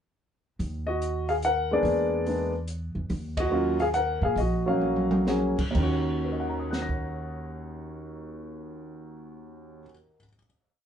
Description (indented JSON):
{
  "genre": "jazz piano trio",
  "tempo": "122-144 BPM",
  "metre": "3/4",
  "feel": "swing 67% on 8ths",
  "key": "Eb minor",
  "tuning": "A4 = 441 Hz",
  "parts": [
    { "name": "upright bass", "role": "bass", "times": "0.6-9.8 s", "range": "Bb1 to Bb2", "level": "-31 LUFS", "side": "right 1 dB", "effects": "none" },
    { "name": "open jazz drum kit", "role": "drums", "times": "0.6-7.0 s", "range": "crash cymbal, hi-hat, kick drum, ride cymbal, snare drum, toms", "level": "-32 LUFS", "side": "right 1 dB", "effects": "none" },
    { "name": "warm concert grand piano", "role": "melody", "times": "0.9-10.4 s", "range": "Eb2 to Bb6", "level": "-27 LUFS", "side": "left 1 dB", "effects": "none" }
  ],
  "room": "moderate studio reverb, RT60 0.5 s",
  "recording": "band playing live in one room, nothing above 11.0 kHz",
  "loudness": "-24 LUFS",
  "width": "side -8 dB against mid",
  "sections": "0.6-5.7 A section; 5.7-8.7 final chord",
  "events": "slowing down 3.1-5.7; band accent 3.3; drum fill 4.8-5.3",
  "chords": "0.6 Ebm; 1.8 E7#11; 3.1 Ebm7"
}